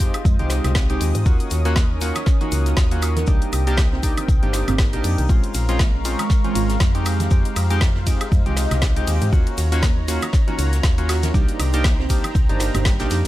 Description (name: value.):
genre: deep house.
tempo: 119 BPM.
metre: 4/4.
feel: swing 56% on 16ths.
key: unclear.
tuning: A4 = 440 Hz.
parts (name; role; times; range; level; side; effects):
warm analog pad; sustained chords; 0.0-13.3 s; C4 to Eb6; -34 LUFS; left 2 dB; chorus, tremolo, sidechain pumping.
soft round pluck; arpeggios; 0.0-12.9 s; G3 to Bb4; -33 LUFS; right 3 dB; analog chorus, sidechain pumping, tape echo.
warm analog keys; stabs; 0.0-13.3 s; Ab3 to G4; -26 LUFS; right 1 dB; chorus, sidechain pumping, analog delay.
woody FM bass; bass; 0.0-13.3 s; G1 to Ab2; -21 LUFS; equal; sidechain pumping.
deep house drum kit; drums; 0.0-13.3 s; hi-hat, ride cymbal, snare drum, woodblock; -28 LUFS; equal; none.
electronic kick drum; drums; 0.0-13.0 s; none; -18 LUFS; equal; none.
jazz brush drum kit; drums; 0.0-13.3 s; hi-hat, shaker, snare drum; -37 LUFS; left 2 dB; none.
egg shaker; percussion; 0.0-13.3 s; none; -39 LUFS; left 3 dB; none.
warbly tape-like pad; texture; 0.0-13.3 s; Ab3 to Db6; -31 LUFS; right 2 dB; chorus, built-in reverb, sidechain pumping.
congas; percussion; 0.4-13.3 s; none; -34 LUFS; right 2 dB; none.
room: digital ambience.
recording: none.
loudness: -17 LUFS.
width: side -15 dB against mid.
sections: 0.0-13.3 A section.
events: none.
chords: 0.0 Fm7; 1.3 Ebm7; 3.3 Cm7; 5.3 Bbm7; 7.1 Fm7; 9.3 Ebm7; 11.3 Cm7.